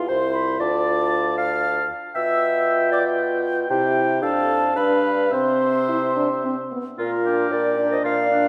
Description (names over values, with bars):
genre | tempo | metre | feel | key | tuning
quick classical-period movement for wind quintet | 106-119 BPM | 3/4 | rubato | C major | A4 = 440 Hz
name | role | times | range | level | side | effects
mellow hollow concert flute | melody | 0.0-8.5 s | F4 to F6 | -28 LUFS | equal | none
mellow oboe | second line | 0.0-8.5 s | D4 to C6 | -31 LUFS | equal | none
warm French horn | accompaniment | 0.0-8.5 s | B3 to F4 | -29 LUFS | equal | none
warm clarinet | accompaniment | 0.0-8.5 s | G4 to F5 | -25 LUFS | equal | none
mellow bassoon | bass | 0.0-8.5 s | C2 to C3 | -28 LUFS | equal | none
room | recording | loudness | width
wet scoring stage reverb, RT60 2.1 s | dark, warm production | -21 LUFS | mono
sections
0.0-7.0 A section; 7.0-8.5 B section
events
none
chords
0.0 C; 0.6 Dm; 2.2 G7/B; 3.7 C; 4.2 Dm/F; 4.8 G7; 5.3 C; 7.0 Bb